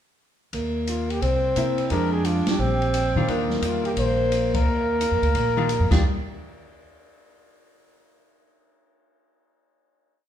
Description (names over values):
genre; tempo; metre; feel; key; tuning
jazz, small-group swing and bop; 175 BPM; 4/4; swing 65% on 8ths; Eb major; A4 = 440 Hz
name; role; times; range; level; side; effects
warm alto saxophone; second line; 0.5-6.0 s; Bb3 to D4; -26 LUFS; right 1 dB; none
upright bass; bass; 0.5-6.0 s; Bb1 to C3; -25 LUFS; equal; none
open jazz drum kit; drums; 0.5-6.0 s; crash cymbal, hi-hat, kick drum, ride cymbal, snare drum; -29 LUFS; equal; none
warm flugelhorn; melody; 0.9-6.0 s; F4 to C5; -26 LUFS; left 1 dB; none
archtop guitar, miked and amplified; accompaniment; 1.6-6.0 s; Eb3 to G4; -28 LUFS; left 3 dB; none
room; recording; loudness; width
moderate large studio reverb, RT60 1.3 s; band playing live in one room; -20 LUFS; side -10 dB against mid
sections
0.5-6.0 A section; 6.0-7.4 final hit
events
band accent 2.4, 4.5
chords
0.5 Eb5; 1.2 C7; 1.9 Fmadd9; 2.6 Bb69; 3.3 Ebmaj9; 6.0 N.C.